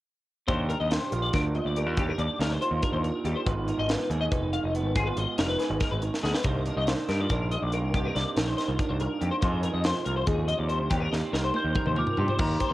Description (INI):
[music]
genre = math rock and midwest emo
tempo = 282 BPM (eighths)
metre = 7/8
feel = straight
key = Eb major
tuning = A4 = 444 Hz
[part]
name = electric guitar through a small old amp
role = accompaniment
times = 0.5-12.7 s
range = Eb2 to Bb4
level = -32 LUFS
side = right 4 dB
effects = cassette tape
[part]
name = twelve-string electric guitar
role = arpeggios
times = 0.5-12.7 s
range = G4 to F5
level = -31 LUFS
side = left 4 dB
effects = ensemble chorus, cassette tape
[part]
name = growling picked electric bass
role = bass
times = 0.5-12.7 s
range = F1 to G2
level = -29 LUFS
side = equal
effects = overdrive
[part]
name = crisp fusion drum kit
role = drums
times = 0.5-12.7 s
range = crash cymbal, hi-hat, kick drum, snare drum, toms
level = -30 LUFS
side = equal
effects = cassette tape
[part]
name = glockenspiel with soft plastic mallets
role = melody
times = 11.6-12.7 s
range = Bb5 to G6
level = -31 LUFS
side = equal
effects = cassette tape
[sound]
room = small room ambience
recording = home recording on cassette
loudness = -25 LUFS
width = side -16 dB against mid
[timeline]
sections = 0.5-12.4 A section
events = drum fill 6.1-6.5, 11.1-12.4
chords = 0.5 Ebmaj7; 3.5 Abm6; 6.5 Cm9; 9.4 Fm9; 10.9 Eb6